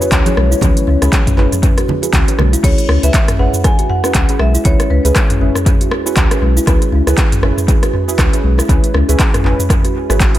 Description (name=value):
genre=afro house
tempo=119 BPM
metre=4/4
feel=swing 57% on 16ths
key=C# minor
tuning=A4 = 441 Hz
part: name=dark analog pad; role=sustained chords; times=0.0-2.6 s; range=G#3 to C#5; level=-24 LUFS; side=left 8 dB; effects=chorus, sidechain pumping
part: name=kalimba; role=arpeggios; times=0.0-10.3 s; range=G#3 to G#4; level=-20 LUFS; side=left 1 dB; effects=sidechain pumping, dub echo
part: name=deep mellow chord stab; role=stabs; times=0.0-10.4 s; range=C#4 to B4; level=-22 LUFS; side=right 2 dB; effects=chorus, sidechain pumping, analog delay
part: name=deep house drum kit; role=drums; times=0.0-10.4 s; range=crash cymbal, handclaps, hi-hat, rim click, shaker, toms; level=-18 LUFS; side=equal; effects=analog delay
part: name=warm sub bass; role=bass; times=0.1-10.4 s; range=G#1 to C#2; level=-14 LUFS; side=equal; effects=sidechain pumping
part: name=electronic kick drum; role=drums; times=0.1-10.3 s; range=none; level=-13 LUFS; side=equal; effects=none
part: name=congas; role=percussion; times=0.3-2.5 s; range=none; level=-23 LUFS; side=right 4 dB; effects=analog delay
part: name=marimba with medium hard mallets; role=melody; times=2.6-6.4 s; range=B4 to G#5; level=-23 LUFS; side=equal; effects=dub echo
room=digital ambience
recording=echo-heavy mix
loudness=-10 LUFS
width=side -13 dB against mid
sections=0.0-2.6 A section; 2.6-10.4 B section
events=drop 2.6-10.4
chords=0.0 C#m7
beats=0.12 | 0.62 1.13 1.63 2.13 | 2.64 3.14 3.65 4.15 | 4.66 5.16 5.66 6.17 | 6.67 7.18 7.68 8.19 | 8.69 9.19 9.70 10.20